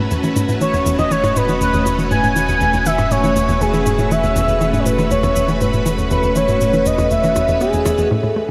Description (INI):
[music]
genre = ambient, sequencer-driven space music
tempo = 120 BPM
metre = 4/4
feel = straight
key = E major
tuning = A4 = 440 Hz
[part]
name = string machine, full ensemble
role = sustained chords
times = 0.0-8.5 s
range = A3 to E5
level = -23 LUFS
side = equal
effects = ensemble chorus
[part]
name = hollow square pluck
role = riff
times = 0.0-8.5 s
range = E2 to B3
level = -22 LUFS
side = equal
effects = chorus, analog delay
[part]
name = warm sub bass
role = bass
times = 0.0-8.5 s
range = E1 to A1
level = -27 LUFS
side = equal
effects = none
[part]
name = cabasa and percussion blips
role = percussion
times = 0.1-8.1 s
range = none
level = -33 LUFS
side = equal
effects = analog delay
[part]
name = expressive synth lead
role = melody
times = 0.6-8.5 s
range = G#4 to G#5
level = -20 LUFS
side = equal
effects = analog chorus, cassette tape, analog delay
[sound]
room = wet huge ambient reverb, RT60 7.5 s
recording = none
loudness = -16 LUFS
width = mono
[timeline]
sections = 0.0-8.1 A section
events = filter sweep on synth arpeggio sound 0.0-8.1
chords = 0.0 E